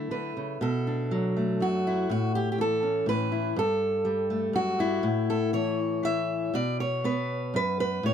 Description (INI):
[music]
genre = folk, solo fingerstyle acoustic guitar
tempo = 121 BPM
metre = 3/4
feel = rubato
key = unclear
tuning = A4 = 441 Hz
[part]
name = fingerpicked steel-string acoustic guitar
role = solo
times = 0.0-8.1 s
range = F#2 to E5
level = -25 LUFS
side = equal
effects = none
[sound]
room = light reverb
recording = dry, close 1970s-style studio recording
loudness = -25 LUFS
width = side -8 dB against mid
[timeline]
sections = 0.6-8.1 A section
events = none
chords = 0.0 Dsus2; 0.6 Bm7; 2.1 A; 3.6 Gsus2; 5.0 A; 6.5 B5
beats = 0.11 | 0.61 1.11 1.61 | 2.10 2.58 3.07 | 3.56 4.04 4.53 | 5.02 5.52 6.03 | 6.54 7.04 7.54 | 8.04